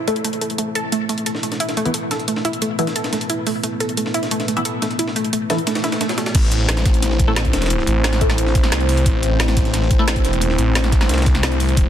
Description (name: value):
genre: dark technical drum and bass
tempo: 177 BPM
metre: 4/4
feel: straight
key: A minor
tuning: A4 = 440 Hz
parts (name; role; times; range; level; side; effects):
- dark analog pad; sustained chords; 0.0-11.9 s; A3 to C5; -25 LUFS; left 1 dB; wide subtle chorus, sidechain pumping
- wide unison pluck; arpeggios; 0.1-6.3 s; A3 to A4; -22 LUFS; right 1 dB; sidechain pumping, ping-pong delay
- filtered dub chord stab; stabs; 0.1-10.0 s; E3 to A4; -26 LUFS; left 2 dB; phaser, lush chorus, ping-pong delay
- drum and bass drum kit; drums; 0.1-11.8 s; crash cymbal, hi-hat, snare drum; -24 LUFS; equal; overdrive
- breakbeat sampler-style drum kit; drums; 0.9-11.9 s; hi-hat, snare drum; -28 LUFS; right 1 dB; high-pass filter on hats, high-pass filter on snare
- swell; sound effects; 5.8-6.3 s; none; -27 LUFS; right 1 dB; none
- snarling distorted saw bass; bass; 6.3-11.9 s; E1 to C2; -18 LUFS; equal; tube saturation
- electronic kick drum; drums; 6.3-11.8 s; none; -17 LUFS; equal; overdrive
room: light reverb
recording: dense, heavily limited modern master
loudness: -16 LUFS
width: side -10 dB against mid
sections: 0.0-6.3 A section; 6.3-11.9 B section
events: filter sweep on synth stab 0.0-6.3; swell 5.8-6.3; drop 6.3-11.9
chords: 0.0 Am; 0.9 Esus4; 6.3 Am